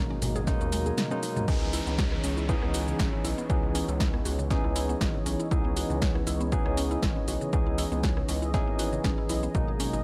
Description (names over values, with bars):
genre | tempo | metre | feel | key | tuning
deep house | 119 BPM | 4/4 | swing 54% on 16ths | C# minor | A4 = 440 Hz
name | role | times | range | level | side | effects
dark analog pad | sustained chords | 0.0-10.0 s | E3 to D#5 | -41 LUFS | equal | chorus, sidechain pumping
mallet-like synth pluck | arpeggios | 0.0-10.0 s | C#3 to G#4 | -40 LUFS | equal | chorus, sidechain pumping, tape echo
barky tine electric piano | stabs | 0.0-10.0 s | B2 to G#4 | -34 LUFS | equal | overdrive, medium tremolo, sidechain pumping, tape echo
round analog bass | bass | 0.0-10.0 s | G#1 to D#2 | -35 LUFS | equal | none
deep house drum kit | drums | 0.2-10.0 s | crash cymbal, hi-hat, rim click, shaker, snare drum, toms | -37 LUFS | equal | overdrive
congas | percussion | 0.2-1.5 s | none | -40 LUFS | equal | none
electronic kick drum | drums | 0.5-9.7 s | none | -31 LUFS | equal | none
downlifter | sound effects | 1.5-5.5 s | none | -44 LUFS | equal | none
room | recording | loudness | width
little or no reverb | none | -28 LUFS | mono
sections
0.0-1.5 A section; 1.5-10.0 B section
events
filter sweep on tine electric piano 0.0-1.5; drum fill 1.0-1.5; drop 1.5-10.0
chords
0.0 G#m9; 1.5 C#m9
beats
0.47 0.98 | 1.48 1.98 2.49 2.99 | 3.50 4.00 4.50 5.01 | 5.51 6.02 6.52 7.03 | 7.53 8.04 8.54 9.04 | 9.55